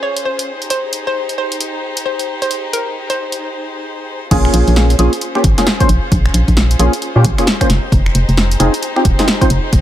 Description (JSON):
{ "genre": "UK garage, two-step garage", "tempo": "133 BPM", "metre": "4/4", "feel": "swing 62% on 16ths", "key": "unclear", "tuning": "A4 = 443 Hz", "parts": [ { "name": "hollow square pluck", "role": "melody", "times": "0.0-3.2 s", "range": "Bb4 to Db5", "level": "-20 LUFS", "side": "equal", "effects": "chorus, digital delay" }, { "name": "warm studio violin section", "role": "sustained chords", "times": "0.0-9.8 s", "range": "Db4 to C5", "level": "-24 LUFS", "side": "left 2 dB", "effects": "sidechain pumping, low-pass filter" }, { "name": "punchy analog drum machine", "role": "drums", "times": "0.2-9.8 s", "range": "crash cymbal, finger snaps, hi-hat, snare drum", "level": "-18 LUFS", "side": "equal", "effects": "overdrive" }, { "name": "percussive organ stab", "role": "stabs", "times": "4.3-9.5 s", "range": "Bb3 to C5", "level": "-16 LUFS", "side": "equal", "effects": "ensemble chorus, tape echo" }, { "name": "organ-like FM bass", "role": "bass", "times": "4.3-9.8 s", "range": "Eb1 to Bb2", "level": "-13 LUFS", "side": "equal", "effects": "none" }, { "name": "electronic kick drum", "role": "drums", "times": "4.3-9.8 s", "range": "none", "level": "-15 LUFS", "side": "equal", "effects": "overdrive" } ], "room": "digital ambience", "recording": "none", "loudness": "-12 LUFS", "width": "side -12 dB against mid", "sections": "0.0-4.3 A section; 4.3-9.8 B section", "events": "break 3.4-4.3; drop 4.3-9.8", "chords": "0.5 Abmaj7/Eb; 4.3 Bbm7; 7.7 Fm7" }